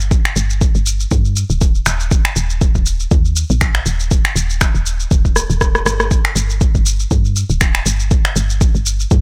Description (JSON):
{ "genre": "afro house", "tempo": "120 BPM", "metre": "4/4", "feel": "swing 55% on 16ths", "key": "G minor", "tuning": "A4 = 439 Hz", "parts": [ { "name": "woody FM bass", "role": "bass", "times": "0.0-9.2 s", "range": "D1 to G2", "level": "-20 LUFS", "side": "equal", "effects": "sidechain pumping" }, { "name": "electronic shaker, finger snaps and rim click", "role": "drums", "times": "0.0-9.2 s", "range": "none", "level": "-22 LUFS", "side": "equal", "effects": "none" }, { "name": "electronic kick drum", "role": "drums", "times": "0.1-9.2 s", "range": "none", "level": "-16 LUFS", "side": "equal", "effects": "none" } ], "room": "little or no reverb", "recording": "none", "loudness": "-15 LUFS", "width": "mono", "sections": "0.0-9.2 A section", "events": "drum fill 5.4-6.1", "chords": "none" }